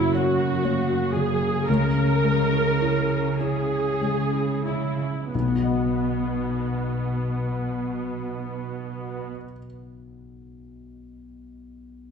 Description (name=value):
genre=cinematic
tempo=29-41 BPM (dotted quarters)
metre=6/8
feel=rubato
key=B major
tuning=A4 = 440 Hz
part: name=felt-muted upright piano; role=accompaniment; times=0.0-12.1 s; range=B1 to F#5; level=-29 LUFS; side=left 3 dB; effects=none
part: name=muted studio viola section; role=accompaniment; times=0.0-9.3 s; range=B3 to A#4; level=-27 LUFS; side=right 2 dB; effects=none
part: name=concert harp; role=arpeggios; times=0.0-9.6 s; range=F#2 to F#5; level=-29 LUFS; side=left 4 dB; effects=none
part: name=muted studio cello section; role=bass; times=0.0-9.3 s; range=F#2 to C#3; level=-28 LUFS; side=right 5 dB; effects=none
room=wet scoring stage reverb, RT60 1.6 s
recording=dark, warm production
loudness=-22 LUFS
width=side -6 dB against mid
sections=0.0-5.3 A section; 5.3-9.3 B section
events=slowing down 0.0-5.3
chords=0.0 F#; 1.7 C#m; 5.3 B